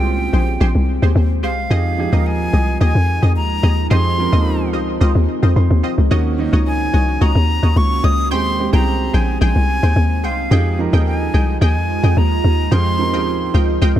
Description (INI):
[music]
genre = amapiano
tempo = 109 BPM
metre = 4/4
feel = straight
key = Ab major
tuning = A4 = 440 Hz
[part]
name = breathy silver concert flute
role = melody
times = 0.0-13.5 s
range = F5 to Eb6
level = -23 LUFS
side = left 1 dB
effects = digital delay
[part]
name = warm grand piano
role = accompaniment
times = 0.0-14.0 s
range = Eb3 to C6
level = -24 LUFS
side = right 5 dB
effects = none
[part]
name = deep dark ambient pad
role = sustained chords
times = 0.0-14.0 s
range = Eb3 to Gb4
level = -25 LUFS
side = right 1 dB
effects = chorus, built-in reverb
[part]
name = punchy chord stab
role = stabs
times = 0.0-13.9 s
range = F4 to G5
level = -27 LUFS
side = equal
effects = chorus, phaser, digital delay
[part]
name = hollow log drum bass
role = bass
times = 0.0-14.0 s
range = Bb1 to F2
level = -15 LUFS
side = equal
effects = none
[sound]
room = small room reverb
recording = none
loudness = -14 LUFS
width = side -12 dB against mid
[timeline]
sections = 0.0-14.0 A section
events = grand piano fill 5.3-6.1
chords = 0.0 Abmaj7; 1.7 Fm9; 3.9 Dbmaj9#11; 6.1 Ebm7; 8.3 Abmaj7; 10.5 Fm9; 12.7 Dbmaj9#11